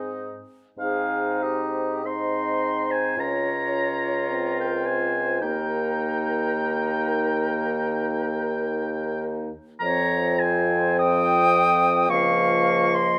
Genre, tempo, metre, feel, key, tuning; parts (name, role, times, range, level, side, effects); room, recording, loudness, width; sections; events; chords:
classical, slow romantic movement for wind quintet; 45-56 BPM; 4/4; rubato; Ab major; A4 = 440 Hz
warm oboe; second line; 0.0-13.2 s; Eb4 to Eb6; -27 LUFS; equal
bright clarinet; accompaniment; 0.0-13.2 s; Bb3 to F4; -33 LUFS; equal
warm French horn; accompaniment; 0.0-13.2 s; F3 to Ab4; -31 LUFS; equal
warm bassoon; bass; 0.0-13.2 s; Db2 to Ab2; -30 LUFS; equal
silver concert flute; melody; 0.8-13.2 s; G4 to G5; -32 LUFS; equal
moderate recital hall reverb, RT60 1.6 s; close, detailed microphones; -23 LUFS; mono
0.8-13.2 A section
0.0 Ab; 3.2 Bbm/Db; 5.4 Eb; 9.8 F5; 12.1 Bbm/Db